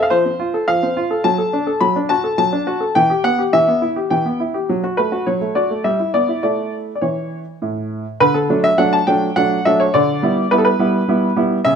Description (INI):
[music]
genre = classical-period piano sonatina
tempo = 104 BPM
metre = 3/4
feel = straight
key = D major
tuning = A4 = 436 Hz
[part]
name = bright baby grand piano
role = solo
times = 0.0-11.8 s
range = A2 to B5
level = -15 LUFS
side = equal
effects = none
[sound]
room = light reverb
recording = close, detailed microphones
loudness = -15 LUFS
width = side -7 dB against mid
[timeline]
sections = 0.0-8.2 A section; 8.2-11.8 B section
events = none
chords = 0.0 F; 1.2 D/F#; 3.0 Em; 4.7 F#madd11; 5.8 Em/G; 6.4 A; 8.2 D; 9.9 Em7/D